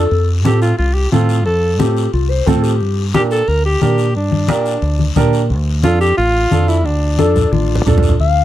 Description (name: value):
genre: latin, cumbia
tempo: 178 BPM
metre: 4/4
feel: straight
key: D minor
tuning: A4 = 440 Hz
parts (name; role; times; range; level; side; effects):
- breathy clarinet; second line; 0.0-3.1, 7.2-8.4 s; D4 to F5; -19 LUFS; left 8 dB; none
- deep dub fingered electric bass; bass; 0.0-8.4 s; A1 to Bb2; -16 LUFS; equal; none
- congas; percussion; 0.1-8.2 s; none; -18 LUFS; left 2 dB; none
- guiro; percussion; 0.1-8.4 s; none; -31 LUFS; left 9 dB; none
- warm upright piano; accompaniment; 0.4-8.1 s; C4 to Bb4; -20 LUFS; right 6 dB; none
- breathy alto saxophone; melody; 0.5-7.9 s; D4 to Bb4; -18 LUFS; equal; none
room: little or no reverb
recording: dry, close 1970s-style studio recording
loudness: -12 LUFS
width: side -13 dB against mid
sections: 0.0-8.2 A section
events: drum fill 7.5-8.2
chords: 0.1 F; 2.8 Gm; 5.5 Dm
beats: | 0.12 0.45 0.79 1.13 | 1.46 1.80 2.13 2.47 | 2.81 3.15 3.48 3.82 | 4.16 4.49 4.83 5.17 | 5.50 5.84 6.18 6.51 | 6.85 7.19 7.53 7.86 | 8.20